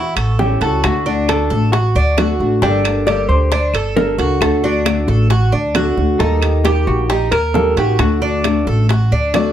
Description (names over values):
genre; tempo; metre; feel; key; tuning
latin, Cuban son and guajira; 134 BPM; 4/4; straight; unclear; A4 = 439 Hz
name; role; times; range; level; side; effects
vintage hollow-body jazz guitar; melody; 0.0-9.5 s; F#4 to D5; -20 LUFS; right 2 dB; none
Cuban tres; arpeggios; 0.0-9.5 s; D4 to Bb4; -20 LUFS; right 2 dB; none
upright bass; bass; 0.0-9.5 s; G1 to E2; -17 LUFS; equal; none
bongos; percussion; 0.2-9.5 s; none; -24 LUFS; left 5 dB; none
claves; percussion; 0.2-9.5 s; none; -29 LUFS; left 7 dB; none
timbales; percussion; 0.2-9.5 s; none; -24 LUFS; right 6 dB; none
flamenco guitar; accompaniment; 0.4-9.5 s; D3 to A4; -20 LUFS; left 5 dB; none
room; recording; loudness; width
light reverb; dark, warm production; -13 LUFS; side -10 dB against mid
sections
0.0-9.5 A section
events
none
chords
0.0 A7; 0.8 D; 2.6 Gmadd9; 4.4 D; 6.2 Eb; 8.0 D